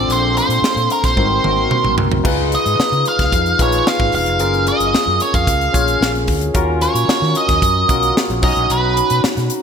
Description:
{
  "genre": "polished 1980s jazz-funk pop",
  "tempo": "112 BPM",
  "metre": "4/4",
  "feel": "straight",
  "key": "unclear",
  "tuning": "A4 = 441 Hz",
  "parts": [
    { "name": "octave-fuzz lead guitar", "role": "melody", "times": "0.0-9.2 s", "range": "Bb4 to E#5", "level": "-17 LUFS", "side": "right 2 dB", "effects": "distortion" },
    { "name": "barky tine electric piano", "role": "accompaniment", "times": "0.0-9.6 s", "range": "Bb3 to A#5", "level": "-20 LUFS", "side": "left 2 dB", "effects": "lush chorus" },
    { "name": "overdriven fingered electric bass", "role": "bass", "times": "0.0-9.5 s", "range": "E1 to D#3", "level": "-21 LUFS", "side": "equal", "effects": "none" },
    { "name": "crisp fusion drum kit", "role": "drums", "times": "0.1-9.6 s", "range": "crash cymbal, hi-hat, kick drum, snare drum, toms", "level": "-19 LUFS", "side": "equal", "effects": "none" }
  ],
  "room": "moderate lush hall reverb, RT60 1.7 s, studio ambience",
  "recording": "bright 1980s-style digital production",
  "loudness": "-13 LUFS",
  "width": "side -7 dB against mid",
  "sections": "0.0-2.2 A section; 2.2-9.6 A section",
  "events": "drum fill 1.2-2.2",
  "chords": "0.0 Bbmaj7; 1.2 Ab7; 2.2 C#7; 4.4 F#maj7; 6.5 D#m7; 8.4 Bmaj7"
}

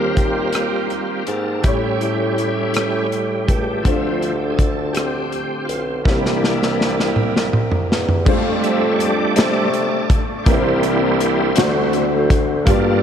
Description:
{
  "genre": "slow gospel",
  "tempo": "54 BPM (dotted quarters)",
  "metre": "6/8",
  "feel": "straight",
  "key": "F major",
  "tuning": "A4 = 441 Hz",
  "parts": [
    { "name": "warm concert grand piano", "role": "accompaniment", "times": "0.0-13.0 s", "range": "G2 to D5", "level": "-22 LUFS", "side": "left 1 dB", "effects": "ensemble chorus" },
    { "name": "bright tonewheel organ", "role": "sustained chords", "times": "0.0-13.0 s", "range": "E3 to E5", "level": "-22 LUFS", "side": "right 2 dB", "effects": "slow rotary speaker, chorus vibrato" },
    { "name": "mellow bassoon", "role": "bass", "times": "0.0-13.0 s", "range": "B1 to C3", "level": "-23 LUFS", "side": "equal", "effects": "none" },
    { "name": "modern studio drum kit", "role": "drums", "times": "0.2-12.8 s", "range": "crash cymbal, hi-hat, kick drum, rim click, snare drum, toms", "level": "-19 LUFS", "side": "equal", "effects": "none" }
  ],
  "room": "moderate cathedral reverb, RT60 6.1 s",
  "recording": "dreamy mix soaked in reverb",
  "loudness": "-16 LUFS",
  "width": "side -8 dB against mid",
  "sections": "0.0-8.3 A section; 8.3-13.0 B section",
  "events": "tonewheel organ solo 0.0-8.3, 8.3-13.0; drum fill 6.1-8.3",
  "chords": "0.0 Eb6; 1.6 A7; 3.8 Dm7; 6.1 C7; 8.3 F6; 10.5 C7; 11.6 D7"
}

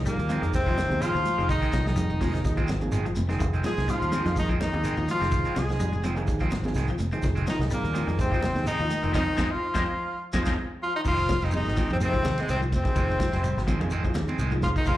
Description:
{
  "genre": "afrobeat",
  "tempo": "125 BPM",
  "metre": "4/4",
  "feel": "swing 54% on 16ths",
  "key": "F minor",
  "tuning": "A4 = 440 Hz",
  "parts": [
    { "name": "overdriven reed electric piano", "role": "accompaniment", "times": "0.0-14.9 s", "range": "F3 to Bb4", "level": "-36 LUFS", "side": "right 3 dB", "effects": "slapback echo" },
    { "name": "fingered electric bass", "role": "bass", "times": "0.0-15.0 s", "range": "F1 to F2", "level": "-28 LUFS", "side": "equal", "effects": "none" },
    { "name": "edgy tenor saxophone", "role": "melody", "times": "0.1-15.0 s", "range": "Ab3 to Ab4", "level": "-29 LUFS", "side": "left 1 dB", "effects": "slapback echo" },
    { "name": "bright trumpet", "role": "second line", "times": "0.1-15.0 s", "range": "Ab4 to Ab5", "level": "-38 LUFS", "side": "right 3 dB", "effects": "slapback echo" },
    { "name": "brilliant trombone section", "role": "second line", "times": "0.1-15.0 s", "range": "Ab2 to Ab3", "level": "-36 LUFS", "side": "left 2 dB", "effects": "slapback echo" },
    { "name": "electric guitar at the edge of break-up", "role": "arpeggios", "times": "0.1-15.0 s", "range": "C3 to Ab3", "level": "-35 LUFS", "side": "left 5 dB", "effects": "analog chorus, slapback echo" },
    { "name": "warm soul drum kit", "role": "drums", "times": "0.1-15.0 s", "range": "crash cymbal, hi-hat, kick drum, ride cymbal, snare drum", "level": "-31 LUFS", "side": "equal", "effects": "none" },
    { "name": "shekere", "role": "percussion", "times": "0.1-15.0 s", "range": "none", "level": "-36 LUFS", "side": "equal", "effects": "none" },
    { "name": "electric guitar at the edge of break-up", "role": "stabs", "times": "0.2-15.0 s", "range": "Eb3 to C4", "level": "-35 LUFS", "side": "right 4 dB", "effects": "slapback echo" },
    { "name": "congas", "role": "percussion", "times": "0.3-14.8 s", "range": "none", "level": "-35 LUFS", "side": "right 2 dB", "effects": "none" }
  ],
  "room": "light reverb, small room ambience",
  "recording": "live gig heard through the venue's PA, club reverb",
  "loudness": "-23 LUFS",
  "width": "side -14 dB against mid",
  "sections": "0.0-11.1 A section; 11.1-15.0 B section",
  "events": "band accent 9.1-11.1",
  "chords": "0.0 Fm7"
}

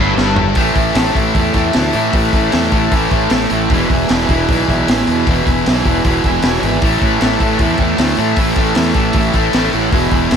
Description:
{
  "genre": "garage rock duo or trio",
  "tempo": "154 BPM",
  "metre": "4/4",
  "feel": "straight",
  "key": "A major",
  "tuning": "A4 = 440 Hz",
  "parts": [
    { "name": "combo organ", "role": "sustained chords", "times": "0.0-10.4 s", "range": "E4 to B5", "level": "-25 LUFS", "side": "right 2 dB", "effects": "none" },
    { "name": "fuzz guitar", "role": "riff", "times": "0.0-10.4 s", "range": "E2 to A3", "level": "-14 LUFS", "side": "equal", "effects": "distortion" },
    { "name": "fuzz fingered electric bass", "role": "bass", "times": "0.0-10.4 s", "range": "E1 to A2", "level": "-20 LUFS", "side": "equal", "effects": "overdrive" },
    { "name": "crunchy breakbeat drum kit", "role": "drums", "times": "0.2-10.4 s", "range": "hi-hat, kick drum, snare drum, toms", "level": "-17 LUFS", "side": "equal", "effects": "none" }
  ],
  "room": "little or no reverb",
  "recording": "none",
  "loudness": "-12 LUFS",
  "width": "side -7 dB against mid",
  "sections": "0.6-10.4 A section",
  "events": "drum fill 0.2-0.6; transistor combo organ fill 6.0-6.8, 9.3-9.9",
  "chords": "0.0 A; 3.7 E; 6.8 A"
}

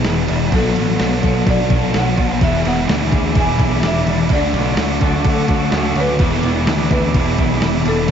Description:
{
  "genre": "rock, shoegaze and dream pop",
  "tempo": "127 BPM",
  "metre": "4/4",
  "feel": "straight",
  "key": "E mixolydian",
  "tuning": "A4 = 440 Hz",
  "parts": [
    { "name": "marimba with medium hard mallets", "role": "melody", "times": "0.0-8.1 s", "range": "A4 to G#5", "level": "-24 LUFS", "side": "right 1 dB", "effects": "digital delay" },
    { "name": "picked twelve-string acoustic guitar", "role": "arpeggios", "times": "0.0-8.1 s", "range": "F#3 to A4", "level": "-26 LUFS", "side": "right 4 dB", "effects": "ensemble chorus, digital delay" },
    { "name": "biting overdriven guitar", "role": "riff", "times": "0.0-8.1 s", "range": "E2 to F#4", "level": "-23 LUFS", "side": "right 12 dB", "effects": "reverse reverb" },
    { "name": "overdriven semi-hollow guitar", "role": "riff", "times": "0.0-8.1 s", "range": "B2 to G#4", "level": "-25 LUFS", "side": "equal", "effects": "none" },
    { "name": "thick fuzz guitar", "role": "riff", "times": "0.0-8.1 s", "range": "E2 to D4", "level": "-21 LUFS", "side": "left 12 dB", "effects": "distortion, wide subtle chorus" },
    { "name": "fuzz picked electric bass", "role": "bass", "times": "0.0-8.1 s", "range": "E1 to D2", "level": "-20 LUFS", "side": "equal", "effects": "overdrive" },
    { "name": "crisp 8-bit digital drum machine", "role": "drums", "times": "0.0-8.1 s", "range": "crash cymbal, kick drum, snare drum", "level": "-20 LUFS", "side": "equal", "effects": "overdrive" },
    { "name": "warbly tape-like pad", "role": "sustained chords", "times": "2.9-8.1 s", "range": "G#4 to D6", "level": "-27 LUFS", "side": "left 1 dB", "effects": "chorus, built-in reverb" }
  ],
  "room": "digital ambience",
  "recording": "nothing above 7.7 kHz, faint mains hum",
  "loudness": "-14 LUFS",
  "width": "side -8 dB against mid",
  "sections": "0.0-8.1 A section",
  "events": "none",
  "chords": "0.0 E7; 0.5 Bm7; 2.4 E7; 4.3 Dmaj7; 6.2 E7"
}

